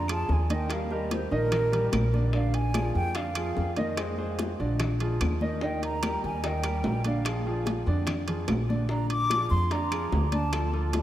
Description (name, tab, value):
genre	Afro-Cuban jazz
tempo	146 BPM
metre	4/4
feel	straight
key	Bb mixolydian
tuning	A4 = 439 Hz
part	mellow hollow silver concert flute	melody	0.0-10.7 s	Bb4 to D6	-32 LUFS	equal	none
part	clear baby grand piano	accompaniment	0.0-11.0 s	D3 to Eb5	-32 LUFS	right 1 dB	none
part	upright bass	bass	0.0-11.0 s	Bb1 to F2	-28 LUFS	equal	none
part	bongos	percussion	0.1-11.0 s	none	-38 LUFS	left 5 dB	none
part	claves	percussion	0.1-10.7 s	none	-47 LUFS	left 3 dB	none
part	congas	percussion	0.1-11.0 s	none	-36 LUFS	left 1 dB	none
part	timbales	percussion	0.1-11.0 s	none	-37 LUFS	right 4 dB	none
room	wet cathedral reverb, RT60 5.3 s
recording	in a vast, echoing space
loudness	-25 LUFS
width	side -12 dB against mid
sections	0.0-11.0 A section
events	flute solo 0.0-11.0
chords	0.0 Fm9; 0.7 Eb; 2.3 Bb7; 4.0 Fm; 4.8 Bb7; 5.6 Eb; 7.3 Bb7